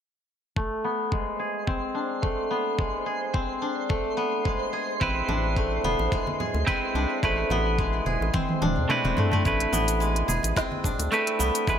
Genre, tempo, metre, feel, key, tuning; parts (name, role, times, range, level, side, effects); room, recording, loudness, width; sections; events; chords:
organic downtempo; 108 BPM; 4/4; swing 54% on 16ths; A harmonic minor; A4 = 440 Hz
steel-string zither; arpeggios; 0.6-11.8 s; G#3 to G#4; -27 LUFS; left 1 dB; low-pass filter, digital delay
electronic kick drum; drums; 0.6-11.8 s; -29 LUFS; equal; overdrive
twinkling granular texture; texture; 1.2-9.5 s; C5; -36 LUFS; right 3 dB; built-in reverb, wide subtle chorus
semi-hollow electric guitar; accompaniment; 5.0-11.8 s; A3 to B4; -28 LUFS; right 3 dB; sidechain pumping, digital delay
round analog bass; bass; 5.0-11.8 s; E1 to E2; -28 LUFS; equal; sidechain pumping
congas and bongos; percussion; 5.3-11.5 s; -36 LUFS; right 2 dB
organic electronic drum kit; drums; 8.3-11.8 s; hi-hat, shaker, snare drum, toms; -28 LUFS; right 1 dB
moderate plate reverb, RT60 2.9 s; bright 1980s-style digital production; -23 LUFS; side -8 dB against mid
0.6-9.5 A section; 9.5-11.8 B section
filter sweep on guzheng 0.6-9.5; drum fill 8.3-9.5; kick drops out 8.9-9.5
0.6 Amadd9